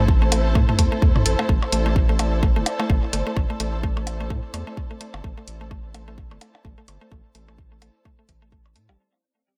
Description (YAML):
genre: minimal techno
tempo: 128 BPM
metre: 4/4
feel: swing 57% on 16ths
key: A minor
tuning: A4 = 440 Hz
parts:
  - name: mallet-like synth pluck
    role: riff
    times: 0.0-8.9 s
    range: E3 to A4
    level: -31 LUFS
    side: equal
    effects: chorus, sidechain pumping, delay
  - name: round analog bass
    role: bass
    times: 0.0-9.0 s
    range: G1 to A2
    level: -26 LUFS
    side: equal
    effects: sidechain pumping
  - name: dark symphonic string section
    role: texture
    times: 0.0-9.0 s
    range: E4 to A5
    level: -32 LUFS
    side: equal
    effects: sidechain pumping
  - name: pulsing gated texture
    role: texture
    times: 0.0-9.0 s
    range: C4 to D5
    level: -40 LUFS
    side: equal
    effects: none
  - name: electronic kick drum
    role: drums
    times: 0.1-8.6 s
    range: none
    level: -23 LUFS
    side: equal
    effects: none
  - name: electronic hi-hat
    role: drums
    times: 0.3-8.9 s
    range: none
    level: -29 LUFS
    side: equal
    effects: none
  - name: electronic percussion blips and toms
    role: percussion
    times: 0.3-9.0 s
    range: none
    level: -29 LUFS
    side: equal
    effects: digital delay
room: light reverb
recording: none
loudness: -21 LUFS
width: mono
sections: 0.0-9.0 A section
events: fade-out 0.0-9.0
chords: 0.0 Am